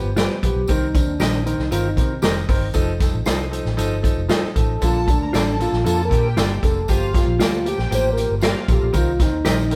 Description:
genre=uptempo 1960s-style soul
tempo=116 BPM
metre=4/4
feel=straight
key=Bb major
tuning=A4 = 440 Hz
part: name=clear grand piano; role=accompaniment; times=0.0-9.8 s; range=D3 to Bb4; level=-29 LUFS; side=equal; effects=tube saturation
part: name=vintage muted fingered electric bass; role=bass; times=0.0-9.8 s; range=F1 to C3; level=-26 LUFS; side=equal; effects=none
part: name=clean electric guitar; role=stabs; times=0.2-9.6 s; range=F4 to Eb5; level=-28 LUFS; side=equal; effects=tube saturation, spring reverb
part: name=swinging big-band drum kit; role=drums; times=0.2-9.8 s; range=hi-hat, kick drum, snare drum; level=-23 LUFS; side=equal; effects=none
part: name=tambourine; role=percussion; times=0.2-9.8 s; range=none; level=-40 LUFS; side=equal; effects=none
part: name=mellow tonewheel organ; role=melody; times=0.5-9.8 s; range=D4 to C5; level=-26 LUFS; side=equal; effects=stopped rotary speaker
part: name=warm studio violin section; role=second line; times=4.8-8.8 s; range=F4 to Bb5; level=-32 LUFS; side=equal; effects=none
room=moderate stone room reverb, RT60 1.2 s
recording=band playing live in one room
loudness=-20 LUFS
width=mono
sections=0.0-9.8 A section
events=tonewheel organ solo 0.0-9.8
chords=0.0 G7; 0.7 Cm7; 2.8 F7; 4.8 Bbmaj7; 6.9 Gm7; 8.9 Cm7

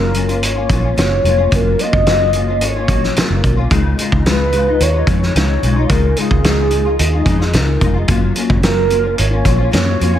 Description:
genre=indie pop, bedroom pop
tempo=110 BPM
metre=4/4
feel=straight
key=F# major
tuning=A4 = 439 Hz
part: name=warbly nostalgic lead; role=melody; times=0.0-10.2 s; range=G#4 to D#5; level=-18 LUFS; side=right 1 dB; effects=analog chorus, tape echo
part: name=nylon-string guitar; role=accompaniment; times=0.0-10.2 s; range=C#3 to E#4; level=-20 LUFS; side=left 4 dB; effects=ensemble chorus, warbly pitch drift
part: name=vintage muted fingered electric bass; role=bass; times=0.0-10.2 s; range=E#1 to F#2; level=-17 LUFS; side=equal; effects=none
part: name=loose indie drum kit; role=drums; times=0.1-10.1 s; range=hi-hat, kick drum, snare drum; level=-17 LUFS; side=equal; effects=none
room=moderate plate reverb, RT60 1.1 s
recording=dreamy mix soaked in reverb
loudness=-12 LUFS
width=side -11 dB against mid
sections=0.0-10.2 A section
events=none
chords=0.0 F#maj7; 3.7 C#add9; 8.1 F#maj7

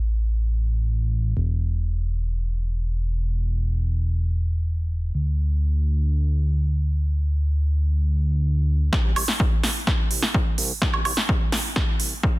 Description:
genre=EDM, festival progressive house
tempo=127 BPM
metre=4/4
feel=straight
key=unclear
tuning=A4 = 440 Hz
part: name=fat analog bass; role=bass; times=0.0-12.3 s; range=E1 to D2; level=-21 LUFS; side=equal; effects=sidechain pumping, high-pass filter
part: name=big-room dance drum kit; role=drums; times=8.9-12.1 s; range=hi-hat, snare drum, woodblock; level=-24 LUFS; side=right 1 dB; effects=overdrive, low-pass filter on snare, low-pass filter on hats, low-pass filter on perc, low-pass filter on room
part: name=electronic kick drum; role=drums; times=8.9-12.3 s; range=none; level=-22 LUFS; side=equal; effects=overdrive
room=little or no reverb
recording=dense, heavily limited modern master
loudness=-20 LUFS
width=side -20 dB against mid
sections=0.0-8.9 A section; 8.9-12.4 B section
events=build-up 8.9-12.4; drum fill 8.9-12.4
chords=none

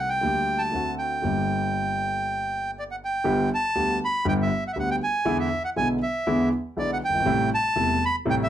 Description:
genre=tango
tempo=120 BPM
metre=4/4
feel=rubato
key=G harmonic minor, G major from 3.3 s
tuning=A4 = 440 Hz
part: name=bandoneon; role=melody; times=0.0-8.5 s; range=D5 to B5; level=-25 LUFS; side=right 1 dB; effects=none
part: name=warm concert grand piano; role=accompaniment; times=0.0-8.5 s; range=E1 to A4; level=-26 LUFS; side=equal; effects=none
room=moderate club reverb, RT60 0.6 s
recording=none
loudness=-22 LUFS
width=side -10 dB against mid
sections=0.0-3.3 A section; 3.3-8.5 B section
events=none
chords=0.2 Gm/D; 0.7 D7; 1.2 Gm; 3.3 G; 5.3 E7; 7.3 Am7

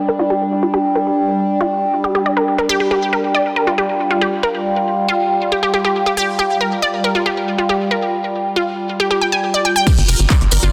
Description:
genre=psychedelic trance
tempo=138 BPM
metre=4/4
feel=straight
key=G minor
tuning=A4 = 440 Hz
part: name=overtone-sweeping drone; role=sustained chords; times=0.0-10.7 s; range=G3 to F4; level=-21 LUFS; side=equal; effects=chorus, built-in reverb, phaser, sidechain pumping
part: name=unison pluck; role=riff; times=0.1-10.7 s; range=F4 to Ab5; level=-20 LUFS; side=equal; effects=sidechain pumping, delay
part: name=electronic kick drum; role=drums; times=9.9-10.4 s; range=none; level=-16 LUFS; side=equal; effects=none
part: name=techno drum kit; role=drums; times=9.9-10.7 s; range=crash cymbal, handclaps, hi-hat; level=-24 LUFS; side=equal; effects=none
part: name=tambourine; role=percussion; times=9.9-10.7 s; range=none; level=-26 LUFS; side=equal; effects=none
part: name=tight sequencer bass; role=bass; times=10.0-10.7 s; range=F1 to G1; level=-17 LUFS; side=equal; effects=none
room=moderate lush hall reverb, RT60 2.0 s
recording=dense, heavily limited modern master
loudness=-17 LUFS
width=mono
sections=0.0-9.9 A section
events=filter sweep on synth arpeggio sound 0.0-9.9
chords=0.0 G5

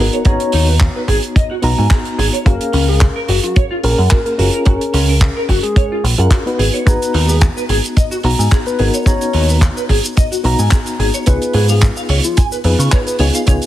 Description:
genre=nu-disco, nu disco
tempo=109 BPM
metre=4/4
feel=swing 54% on 16ths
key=G# dorian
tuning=A4 = 440 Hz
part: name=mellow reed electric piano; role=accompaniment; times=0.0-13.7 s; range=B3 to A#5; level=-20 LUFS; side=left 1 dB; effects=fast tremolo, sidechain pumping, slapback echo
part: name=electric guitar through a small old amp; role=riff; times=0.0-13.5 s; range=C#4 to C#6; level=-22 LUFS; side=equal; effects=wide subtle chorus, vintage 12-bit sampler grit, slapback echo
part: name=deep dub picked electric bass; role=bass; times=0.0-13.6 s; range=F#1 to C#3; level=-15 LUFS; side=equal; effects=none
part: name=damped 70s drum kit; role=drums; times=0.1-13.7 s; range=handclaps, hi-hat, shaker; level=-21 LUFS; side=right 2 dB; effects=none
part: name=soft octave-layered synth lead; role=melody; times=0.3-13.1 s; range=E#4 to C#5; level=-22 LUFS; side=left 2 dB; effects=chorus, vintage 12-bit sampler grit, analog delay
part: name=kick drum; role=drums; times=0.3-13.6 s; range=none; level=-12 LUFS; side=equal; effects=none
room=studio reverb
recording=heavily compressed radio sound, multiband compression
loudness=-12 LUFS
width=side -13 dB against mid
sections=0.0-13.7 A section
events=none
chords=0.0 G#m7; 2.5 F#maj7; 6.6 G#m7; 11.3 C#9

